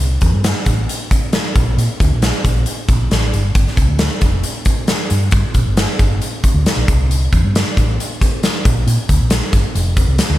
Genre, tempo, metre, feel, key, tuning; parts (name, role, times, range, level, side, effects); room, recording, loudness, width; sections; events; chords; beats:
classic rock; 135 BPM; 4/4; straight; G dorian; A4 = 440 Hz
fingered electric bass; bass; 0.0-10.4 s; F1 to Bb2; -16 LUFS; equal
big rock drum kit; drums; 0.2-10.3 s; hi-hat, kick drum, snare drum; -15 LUFS; equal
little or no reverb; -13 LUFS; side -15 dB against mid
0.0-10.4 A section
| 0.00 0.44 0.89 1.33 | 1.77 2.21 2.66 3.10 | 3.55 3.99 4.43 4.88 | 5.32 5.76 6.21 6.65 | 7.09 7.54 7.98 8.42 | 8.86 9.30 9.74 10.19